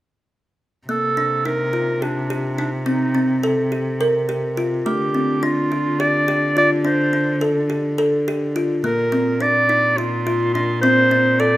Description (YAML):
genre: contemporary instrumental, chamber music in an uneven meter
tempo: 211 BPM (eighths)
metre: 7/8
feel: straight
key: C dorian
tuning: A4 = 440 Hz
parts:
  - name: warm clarinet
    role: melody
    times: 0.9-11.6 s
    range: D4 to D5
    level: -19 LUFS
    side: right 1 dB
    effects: none
  - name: kalimba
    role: arpeggios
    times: 0.9-11.6 s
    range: A3 to Bb4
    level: -21 LUFS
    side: equal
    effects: none
  - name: warm cello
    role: bass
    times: 0.9-11.6 s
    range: Bb2 to D3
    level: -24 LUFS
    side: equal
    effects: none
room: moderate recital hall reverb, RT60 1.4 s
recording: none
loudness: -17 LUFS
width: side -16 dB against mid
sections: 0.9-11.6 A section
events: none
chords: 0.9 C5; 4.9 Dm; 8.8 Bbadd9